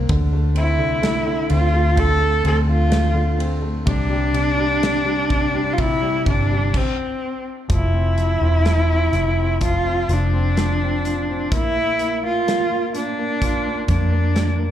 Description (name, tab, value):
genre	pop ballad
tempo	63 BPM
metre	4/4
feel	straight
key	unclear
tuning	A4 = 440 Hz
part	clear baby grand piano	accompaniment	0.0-14.7 s	C3 to F4	-26 LUFS	left 2 dB	plate reverb, slapback echo
part	vintage muted fingered electric bass	bass	0.0-14.7 s	E1 to F2	-20 LUFS	equal	none
part	modern studio drum kit	drums	0.1-14.6 s	crash cymbal, hi-hat, kick drum, ride cymbal, snare drum	-25 LUFS	equal	none
part	warm cello	melody	0.6-14.7 s	C4 to A4	-21 LUFS	equal	plate reverb, slapback echo
room	light reverb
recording	live gig heard through the venue's PA, club reverb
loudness	-17 LUFS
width	side -10 dB against mid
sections	0.0-7.7 A section; 7.7-14.7 A section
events	stop 6.7-7.7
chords	0.1 D5; 3.9 C5; 7.7 F5; 11.5 Bb